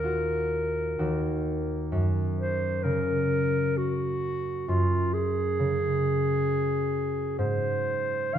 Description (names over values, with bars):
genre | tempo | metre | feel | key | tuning
classical, impressionist duo for clarinet and harp | 61-67 BPM | 3/4 | rubato | unclear | A4 = 439 Hz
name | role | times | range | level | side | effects
mellow clarinet | melody | 0.0-8.4 s | F4 to F5 | -28 LUFS | equal | none
concert harp | accompaniment | 0.0-8.4 s | Eb2 to Gb4 | -28 LUFS | right 1 dB | none
room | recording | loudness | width
wet recital hall reverb, RT60 1.3 s | none | -25 LUFS | side -9 dB against mid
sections
0.0-8.4 A section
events
none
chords
0.0 Gbmaj7/Eb; 1.0 Ebm; 1.9 Gb5; 7.4 Ab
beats
0.04 0.99 | 1.92 2.85 3.78 | 4.69 5.60 6.49 | 7.39 8.35